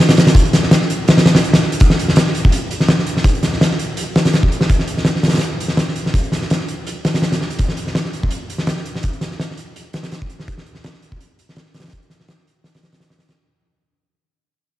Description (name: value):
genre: drum and bass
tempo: 166 BPM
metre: 4/4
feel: swing 54% on 16ths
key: none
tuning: none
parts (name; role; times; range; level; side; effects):
- oversized low-tuned drum kit; drums; 0.0-13.4 s; hi-hat, kick drum, snare drum; -14 LUFS; equal; none
room: light reverb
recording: dry, gritty hardware recording, vinyl crackle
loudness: -14 LUFS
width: side -15 dB against mid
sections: 0.0-1.8 A section; 1.8-13.4 B section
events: drop 0.0-1.8; fade-out 1.8-13.4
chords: none